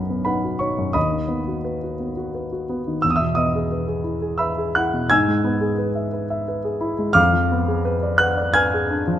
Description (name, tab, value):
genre	classical, romantic character piece for solo piano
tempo	86 BPM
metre	3/4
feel	rubato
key	unclear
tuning	A4 = 441 Hz
part	warm concert grand piano	solo	0.0-9.2 s	B1 to G#6	-19 LUFS	equal	none
room	moderate scoring stage reverb, RT60 1.8 s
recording	close, detailed microphones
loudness	-19 LUFS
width	side -11 dB against mid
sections	0.0-9.2 A section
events	none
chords	0.0 B; 1.0 B/D#; 3.0 E; 5.1 E/G#; 7.2 Fdim7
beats	0.26 | 0.96 1.65 2.35 | 3.04 3.73 4.42 | 5.12 5.81 6.49 | 7.17 7.86 8.55